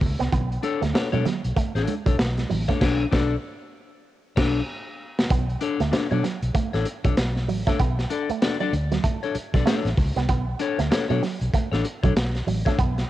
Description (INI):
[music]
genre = funk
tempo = 96 BPM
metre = 4/4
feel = swing 60% on 16ths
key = B minor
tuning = A4 = 440 Hz
[part]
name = electric guitar with an envelope filter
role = riff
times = 0.0-12.9 s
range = F#3 to B3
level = -30 LUFS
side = right 8 dB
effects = spring reverb
[part]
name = vintage muted fingered electric bass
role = bass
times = 0.0-13.0 s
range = A1 to B2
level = -25 LUFS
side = equal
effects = none
[part]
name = crunchy breakbeat drum kit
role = drums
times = 0.0-13.1 s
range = crash cymbal, hi-hat, kick drum, snare drum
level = -24 LUFS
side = equal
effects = cassette tape
[part]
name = congas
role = percussion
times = 0.0-2.7 s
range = none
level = -32 LUFS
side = right 7 dB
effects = none
[part]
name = clean electric guitar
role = accompaniment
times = 0.6-12.8 s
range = D4 to D5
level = -28 LUFS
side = left 7 dB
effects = wide subtle chorus
[sound]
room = small room ambience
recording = home recording on cassette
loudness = -21 LUFS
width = side -14 dB against mid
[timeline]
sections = 0.0-5.3 A section; 5.3-13.1 B section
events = band accent 2.8-5.3; drum fill 4.1-5.3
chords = 0.0 Bm9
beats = | 0.32 0.95 1.57 2.19 | 2.81 3.44 4.06 4.68 | 5.31 5.93 6.55 7.18 | 7.80 8.42 9.05 9.67 | 10.29 10.92 11.54 12.16 | 12.79